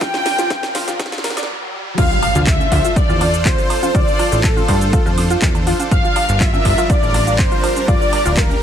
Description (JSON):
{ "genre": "progressive house", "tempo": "122 BPM", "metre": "4/4", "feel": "straight", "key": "unclear", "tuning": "A4 = 440 Hz", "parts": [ { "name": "wide unison lead", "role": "melody", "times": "0.0-8.6 s", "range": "A4 to G5", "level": "-21 LUFS", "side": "equal", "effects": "ping-pong delay" }, { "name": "warm chamber violin section", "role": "second line", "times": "0.0-8.6 s", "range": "A4 to G5", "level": "-25 LUFS", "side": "left 3 dB", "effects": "sidechain pumping, ping-pong delay" }, { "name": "supersaw pad", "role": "sustained chords", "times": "0.0-8.6 s", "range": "G3 to C5", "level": "-26 LUFS", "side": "right 1 dB", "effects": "sidechain pumping" }, { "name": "soft round pluck", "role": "arpeggios", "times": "0.0-8.5 s", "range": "F4 to F5", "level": "-24 LUFS", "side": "equal", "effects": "wide subtle chorus, cassette tape, sidechain pumping, ping-pong delay" }, { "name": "electronic kick drum", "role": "drums", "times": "0.0-8.5 s", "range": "none", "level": "-17 LUFS", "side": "equal", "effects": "overdrive" }, { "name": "house drum kit", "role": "drums", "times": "0.0-8.6 s", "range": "cabasa, crash cymbal, handclaps, hi-hat, snare drum", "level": "-23 LUFS", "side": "equal", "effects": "overdrive, sidechain pumping on hats, sidechain pumping on perc, sidechain pumping on cymbals" }, { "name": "riser and impact", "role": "sound effects", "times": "0.0-3.9 s", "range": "none", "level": "-27 LUFS", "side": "equal", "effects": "none" }, { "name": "plucky analog bass", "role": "bass", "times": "2.0-8.6 s", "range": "D1 to G2", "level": "-19 LUFS", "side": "equal", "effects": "sidechain pumping" }, { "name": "cowbell, woodblock and congas", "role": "percussion", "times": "2.2-8.6 s", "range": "none", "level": "-28 LUFS", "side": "right 5 dB", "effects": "overdrive, sidechain pumping on perc" } ], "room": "digital ambience", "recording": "high-pass filter", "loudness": "-13 LUFS", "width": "side -9 dB against mid", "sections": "0.0-2.0 A section; 2.0-8.6 B section", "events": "build-up 0.0-2.0; drum fill 0.0-1.5; riser 0.0-2.0; filter sweep on analog synth lead 0.0-2.0; stop 1.5-2.0; drop 2.0-8.6; impact 2.0-3.9", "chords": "0.0 Gm7; 2.0 Dm7; 5.9 Gm7", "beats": "| 0.01 0.51 1.00 1.49 | 1.98 2.47 2.96 3.46 | 3.95 4.44 4.93 5.42 | 5.91 6.41 6.90 7.39 | 7.88 8.37" }